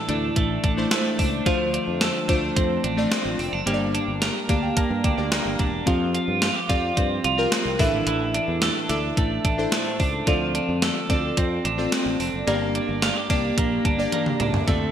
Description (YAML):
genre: 1980s-style pop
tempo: 109 BPM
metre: 4/4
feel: straight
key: D minor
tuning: A4 = 442 Hz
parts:
  - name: glassy digital keys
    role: accompaniment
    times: 0.0-14.9 s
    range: G2 to Bb5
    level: -25 LUFS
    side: left 1 dB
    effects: chorus
  - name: twelve-string electric guitar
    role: riff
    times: 0.0-14.9 s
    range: E3 to Bb4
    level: -26 LUFS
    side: right 4 dB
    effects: lush chorus, digital delay
  - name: sustaining fretless electric bass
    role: bass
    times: 0.1-14.9 s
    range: E1 to G2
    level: -29 LUFS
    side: equal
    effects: none
  - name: gated 80s digital drum machine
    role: drums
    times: 0.1-14.8 s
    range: hi-hat, kick drum, snare drum, toms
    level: -24 LUFS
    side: equal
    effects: gated reverb, gated reverb snare
room: moderate lush hall reverb, RT60 1.8 s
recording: bright 1980s-style digital production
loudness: -20 LUFS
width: side -9 dB against mid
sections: 0.0-14.7 A section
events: synth keys fill 4.2-5.9; drum fill 14.1-14.7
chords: 0.0 Asus4; 1.5 Dm7; 3.7 Gm; 5.9 Fsus2; 7.8 Asus4; 10.3 Dm7; 12.5 Gm